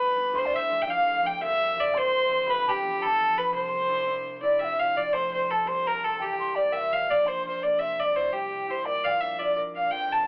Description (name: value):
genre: celtic folk, Celtic jig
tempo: 113 BPM (dotted quarters)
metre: 6/8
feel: straight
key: C major, F major from 4.6 s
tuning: A4 = 440 Hz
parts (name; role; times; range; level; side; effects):
- warm fiddle; melody; 0.0-10.3 s; G4 to A5; -25 LUFS; equal; none
- concert harp; accompaniment; 0.0-10.3 s; D1 to Bb4; -40 LUFS; equal; none
- mellow hollow mid whistle; second line; 0.3-10.3 s; D5 to C6; -27 LUFS; equal; none
room: moderate studio reverb, RT60 0.6 s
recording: telephone sound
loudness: -23 LUFS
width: side -34 dB against mid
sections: 0.0-4.6 A section; 4.6-10.3 B section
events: none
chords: 0.3 Dm; 1.4 C; 2.5 G7; 3.5 Cadd9; 4.6 F; 5.7 C; 6.7 Bb; 7.8 C; 8.9 Bb